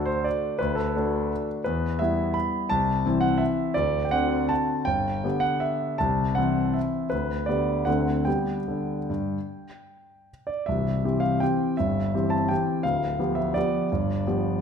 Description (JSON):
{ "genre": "classical, piano waltz", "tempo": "142-180 BPM", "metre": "3/4", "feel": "rubato", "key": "G major, C major from 10.7 s", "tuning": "A4 = 439 Hz", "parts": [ { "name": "clear grand piano", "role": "solo", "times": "0.0-14.6 s", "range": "C1 to B5", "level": "-23 LUFS", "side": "equal", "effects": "none" } ], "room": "wet recital hall reverb, RT60 1.4 s", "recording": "minimal, uncompressed stereo recording", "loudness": "-23 LUFS", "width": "side -7 dB against mid", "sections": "0.0-10.7 A section; 10.7-14.6 B section", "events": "none", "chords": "0.0 D; 1.6 Em; 2.7 Am/C; 3.8 D7; 4.9 G; 6.0 Am/C; 7.1 G/D; 7.9 D7; 8.3 G; 10.7 C; 12.9 G7/D", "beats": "0.25 | 0.60 0.95 1.30 | 1.65 1.99 2.35 | 2.70 3.05 3.41 | 3.77 4.13 4.51 | 4.88 5.25 5.63 | 6.01 6.38 6.76 | 7.12 7.48 7.87 | 8.27 8.67 9.09 | 9.48 9.88 10.29 | 10.68 11.04 11.41 | 11.78 12.13 12.50 | 12.86 13.19 13.55 | 13.91 14.26 14.61" }